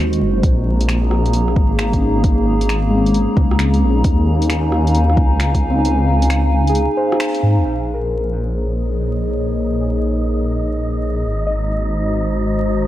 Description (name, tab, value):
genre	future garage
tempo	133 BPM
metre	4/4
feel	swing 66% on 16ths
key	Bb minor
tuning	A4 = 440 Hz
part	muted felt-like synth keys	accompaniment	0.0-12.9 s	Ab3 to Eb5	-23 LUFS	left 1 dB	chorus, sidechain pumping, analog delay
part	warbly tape-like pad	sustained chords	0.0-12.9 s	Ab3 to Bb5	-21 LUFS	equal	chorus, built-in reverb, sidechain pumping
part	swelling detuned saw bass	bass	0.0-12.9 s	Gb1 to Ab2	-18 LUFS	equal	sidechain pumping
part	deep house drum kit	drums	0.1-7.4 s	finger snaps, hi-hat, rim click	-26 LUFS	equal	overdrive
part	electronic kick drum	drums	0.4-5.6 s	none	-16 LUFS	equal	overdrive
part	wind-like tuned noise texture	texture	8.7-12.9 s	Eb4 to Eb5	-27 LUFS	right 2 dB	built-in reverb
room	light reverb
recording	vinyl crackle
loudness	-14 LUFS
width	side -13 dB against mid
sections	0.0-7.7 A section; 7.7-12.9 B section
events	kick drops out 5.8-7.7; band accent 7.2; filter sweep on ambient pad 7.7-12.9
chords	0.4 Bbm7; 4.0 Eb9sus4; 7.7 Bbm7; 11.3 Ab7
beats	| 0.43 0.89 1.34 1.79 | 2.24 2.69 3.14 3.59 | 4.04 4.49 4.95 5.40 | 5.85 6.30 6.75 7.20 | 7.65 8.10 8.55 9.01 | 9.46 9.91 10.36 10.81 | 11.26 11.71 12.16 12.61